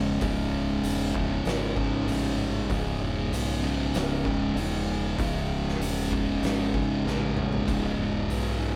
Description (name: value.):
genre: stoner and doom metal.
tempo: 97 BPM.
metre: 4/4.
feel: straight.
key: C# minor.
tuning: A4 = 439 Hz.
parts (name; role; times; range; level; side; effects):
thick fuzz guitar; riff; 0.0-8.8 s; C#2 to C#3; -31 LUFS; equal; distortion.
thick fuzz guitar; riff; 0.0-8.8 s; C#2 to C#3; -34 LUFS; equal; distortion.
growling fingered electric bass; bass; 0.0-8.8 s; C#1 to B1; -34 LUFS; equal; overdrive.
oversized low-tuned drum kit; drums; 0.2-8.4 s; crash cymbal, hi-hat, kick drum, snare drum, toms; -35 LUFS; equal; none.
room: light reverb.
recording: band playing live in one room.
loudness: -27 LUFS.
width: mono.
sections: 0.0-8.8 A section.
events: drum fill 7.0-7.7.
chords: 0.0 C#m.